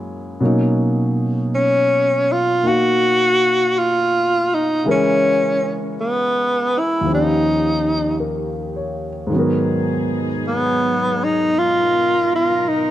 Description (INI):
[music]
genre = jazz ballad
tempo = 54 BPM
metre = 4/4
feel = swing 69% on 8ths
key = unclear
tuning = A4 = 440 Hz
[part]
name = warm grand piano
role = accompaniment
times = 0.0-12.9 s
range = D#2 to E#5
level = -21 LUFS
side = equal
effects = none
[part]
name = clear tenor saxophone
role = melody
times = 1.6-12.9 s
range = B3 to F#4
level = -16 LUFS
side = equal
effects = none
[part]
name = warm studio cello section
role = sustained chords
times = 9.3-12.9 s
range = B2 to A#4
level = -27 LUFS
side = left 1 dB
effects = none
[sound]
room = moderate echo chamber reverb, RT60 2.0 s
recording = dark, warm production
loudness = -16 LUFS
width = side -13 dB against mid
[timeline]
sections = 0.0-12.9 A section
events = none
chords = 0.4 Bmaj9; 4.8 A#m7b5; 7.1 D#7; 9.3 G#m9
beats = | 0.40 1.51 2.62 3.72 | 4.83 5.95 7.06 8.18 | 9.30 10.42 11.54 12.65